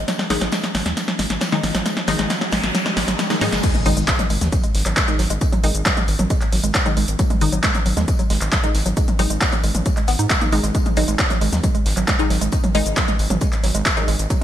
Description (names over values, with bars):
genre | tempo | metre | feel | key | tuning
driving peak-time techno | 135 BPM | 4/4 | straight | unclear | A4 = 440 Hz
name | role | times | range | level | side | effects
gritty driven synth bass | bass | 0.0-14.3 s | F#1 to G#2 | -22 LUFS | equal | sidechain pumping
riser, noise sweep and impact | sound effects | 0.0-5.4 s | none | -29 LUFS | right 1 dB | none
woody wave-folded pluck | riff | 0.1-14.4 s | F#3 to D#4 | -26 LUFS | right 2 dB | chorus, tube saturation, sidechain pumping, ping-pong delay
modern studio drum kit | drums | 0.1-14.4 s | hi-hat, snare drum, tambourine | -34 LUFS | equal | none
punchy analog drum machine | drums | 0.1-14.4 s | crash cymbal, handclaps, hi-hat, shaker, snare drum, toms | -22 LUFS | equal | overdrive, sidechain pumping on hats, small room reverb, sidechain pumping on cymbals, sidechain pumping on perc, sidechain pumping on toms, gated reverb
filtered dub chord stab | stabs | 0.3-14.2 s | D#3 to D#4 | -26 LUFS | left 3 dB | phaser, cassette tape, sidechain pumping, digital delay
electronic kick drum | drums | 3.6-14.4 s | none | -20 LUFS | equal | small room reverb
room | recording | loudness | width
light reverb | bright 1980s-style digital production | -17 LUFS | side -11 dB against mid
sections
0.0-3.6 A section; 3.6-14.4 B section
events
build-up 0.0-3.6; drum fill 0.0-3.6; riser 0.0-3.6; filter sweep on synth arpeggio sound 0.0-3.6; noise sweep 1.9-3.6; drop 3.6-14.4; impact 3.6-5.4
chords
0.0 G#5